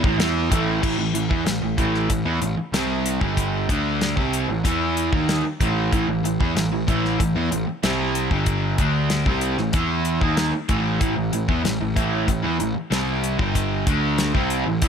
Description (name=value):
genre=classic rock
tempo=94 BPM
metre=4/4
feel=straight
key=unclear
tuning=A4 = 438 Hz
part: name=overdriven semi-hollow guitar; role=riff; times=0.0-14.9 s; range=G2 to E4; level=-22 LUFS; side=right 1 dB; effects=none
part: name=fuzz picked electric bass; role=bass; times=0.0-14.9 s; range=G1 to E2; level=-26 LUFS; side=left 1 dB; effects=overdrive
part: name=damped 70s drum kit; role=drums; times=0.0-14.9 s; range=crash cymbal, hi-hat, kick drum, snare drum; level=-24 LUFS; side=left 1 dB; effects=none
room=little or no reverb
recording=none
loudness=-19 LUFS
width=side -7 dB against mid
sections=0.8-14.9 A section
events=none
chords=0.0 A5